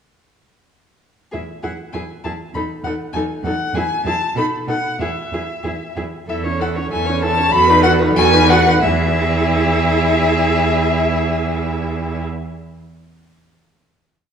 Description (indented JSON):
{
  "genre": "quick classical-period movement for string quartet",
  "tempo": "88-101 BPM",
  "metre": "2/4",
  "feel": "rubato",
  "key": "E major",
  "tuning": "A4 = 440 Hz",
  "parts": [
    { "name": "rich violin", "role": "melody", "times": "1.3-12.2 s", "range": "E5 to B5", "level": "-19 LUFS", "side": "left 3 dB", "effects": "none" },
    { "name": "warm violin", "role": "second line", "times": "1.3-12.2 s", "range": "G#4 to C#5", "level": "-23 LUFS", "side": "left 2 dB", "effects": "none" },
    { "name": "warm viola", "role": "accompaniment", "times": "1.3-12.2 s", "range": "C#4 to F#4", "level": "-23 LUFS", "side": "right 2 dB", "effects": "none" },
    { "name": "warm cello", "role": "bass", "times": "1.3-12.2 s", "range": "E2 to B2", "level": "-20 LUFS", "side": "right 4 dB", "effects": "none" }
  ],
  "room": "wet recital hall reverb, RT60 1.4 s",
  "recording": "small room ambience",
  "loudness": "-15 LUFS",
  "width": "side -7 dB against mid",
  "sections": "1.3-6.3 A section; 6.3-8.8 coda; 8.8-11.5 final chord",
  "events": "slowing down 5.7-8.8",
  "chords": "1.3 E; 2.6 F#m13/E; 3.8 E; 4.4 B; 5.0 E; 6.3 A/E; 7.5 B7/E; 8.8 E",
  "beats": "| 1.33 1.95 | 2.56 3.15 | 3.75 4.37 | 5.01 5.65 | 6.29 6.92 | 7.53 8.16 | 8.83 9.48 | 10.14 10.80"
}